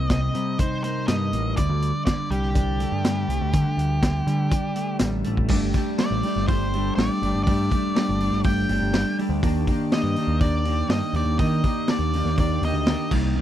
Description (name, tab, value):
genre	indie rock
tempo	122 BPM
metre	4/4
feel	straight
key	G minor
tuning	A4 = 440 Hz
part	octave-fuzz lead guitar	melody	0.0-13.1 s	G4 to G5	-29 LUFS	equal	distortion, slapback echo
part	clean electric guitar	riff	0.0-13.4 s	C3 to G4	-25 LUFS	equal	double-tracked left and right
part	growling picked electric bass	bass	0.0-13.4 s	G1 to Eb3	-25 LUFS	equal	overdrive
part	raw garage drum kit	drums	0.1-13.2 s	crash cymbal, hi-hat, kick drum, snare drum	-24 LUFS	equal	none
room	little or no reverb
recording	dry, close 1970s-style studio recording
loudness	-20 LUFS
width	side -11 dB against mid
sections	0.0-5.5 A section; 5.5-13.4 B section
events	none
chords	0.0 Cm7; 1.6 Dsus4; 5.5 Gsus2; 9.4 Ebmaj7